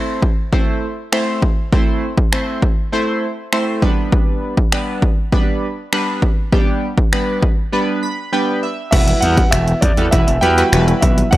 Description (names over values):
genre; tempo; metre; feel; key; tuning
dance-pop; 100 BPM; 4/4; straight; E minor; A4 = 440 Hz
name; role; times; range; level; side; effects
chorused retro synth keys; accompaniment; 0.0-11.2 s; F#3 to B5; -20 LUFS; right 1 dB; sidechain pumping
punchy analog drum machine; drums; 0.2-11.4 s; crash cymbal, finger snaps, hi-hat, kick drum; -16 LUFS; equal; none
warm concert grand piano; melody; 8.9-11.4 s; D5 to G5; -19 LUFS; right 1 dB; none
warm analog pad; sustained chords; 8.9-11.4 s; E3 to B4; -27 LUFS; equal; none
mallet-like synth pluck; arpeggios; 8.9-11.4 s; G3 to F#5; -26 LUFS; left 1 dB; chorus, sidechain pumping, analog delay
gritty slap bass; bass; 8.9-11.4 s; E1 to E2; -16 LUFS; equal; overdrive, sidechain pumping
room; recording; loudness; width
light reverb; dry, gritty hardware recording, transformer saturation; -14 LUFS; side -16 dB against mid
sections
0.0-8.9 A section; 8.9-11.4 B section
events
synth keys fill 7.7-8.9; silent gap 8.3-8.9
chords
0.0 Am; 3.8 G; 8.9 Emadd9